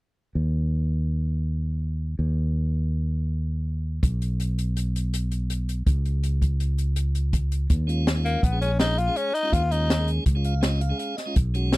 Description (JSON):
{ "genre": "progressive instrumental, band music in an uneven meter", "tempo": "163 BPM", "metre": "5/4", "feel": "straight", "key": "unclear", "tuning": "A4 = 441 Hz", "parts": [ { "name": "fingered electric bass", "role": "bass", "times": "0.4-11.8 s", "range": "Bb1 to Eb2", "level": "-23 LUFS", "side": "equal", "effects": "none" }, { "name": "open jazz drum kit", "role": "drums", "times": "4.0-11.8 s", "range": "hi-hat, kick drum, snare drum", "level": "-24 LUFS", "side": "equal", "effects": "none" }, { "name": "tonewheel organ", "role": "accompaniment", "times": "7.9-11.7 s", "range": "Ab3 to F5", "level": "-31 LUFS", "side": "right 2 dB", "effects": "stopped rotary speaker" }, { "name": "growling tenor saxophone", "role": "melody", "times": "8.2-10.1 s", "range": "Bb3 to F4", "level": "-25 LUFS", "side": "left 2 dB", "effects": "none" } ], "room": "little or no reverb", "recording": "dry, close 1970s-style studio recording", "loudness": "-22 LUFS", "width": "side -20 dB against mid", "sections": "0.4-7.7 A section; 7.7-11.8 B section", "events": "tonewheel organ fill 10.3-11.4", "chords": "0.4 N.C.; 7.7 Ebsus2" }